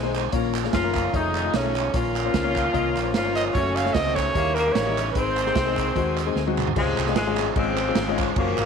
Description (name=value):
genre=uptempo gospel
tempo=149 BPM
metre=4/4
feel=swing 56% on 8ths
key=Db major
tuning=A4 = 440 Hz
part: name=warm saxophone section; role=melody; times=0.0-8.7 s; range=C3 to F4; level=-26 LUFS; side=left 2 dB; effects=none
part: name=clear baby grand piano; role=accompaniment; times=0.0-8.6 s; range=Ab2 to Eb5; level=-27 LUFS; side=left 14 dB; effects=none
part: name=bright tonewheel organ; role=sustained chords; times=0.0-8.7 s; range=Eb3 to Bb4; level=-35 LUFS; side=right 13 dB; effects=slow rotary speaker, overdrive
part: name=hollow-body short-scale fingered electric bass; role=bass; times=0.0-8.7 s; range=F1 to Eb2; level=-29 LUFS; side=equal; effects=none
part: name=swinging big-band drum kit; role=drums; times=0.1-8.7 s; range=crash cymbal, hi-hat, kick drum, ride cymbal, snare drum, toms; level=-28 LUFS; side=right 4 dB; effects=none
part: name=group handclap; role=percussion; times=0.2-8.7 s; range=none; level=-33 LUFS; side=right 15 dB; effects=none
part: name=bright trumpet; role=melody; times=3.4-6.5 s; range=Bb4 to F5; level=-26 LUFS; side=right 4 dB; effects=slapback echo
room=light reverb, small room ambience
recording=1960s-style stereo with parts hard left and right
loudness=-20 LUFS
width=side -6 dB against mid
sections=0.0-6.8 A section; 6.8-8.7 B section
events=drum fill 6.4-6.8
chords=0.3 Bbm; 1.1 F7alt; 1.9 Bbm; 3.5 Gbm; 4.3 Eb7b9; 5.2 Ab; 6.8 Dbmaj7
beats=| 0.33 0.73 1.13 1.53 | 1.94 2.34 2.74 3.14 | 3.54 3.95 4.35 4.75 | 5.15 5.55 5.96 6.36 | 6.76 7.16 7.56 7.96 | 8.36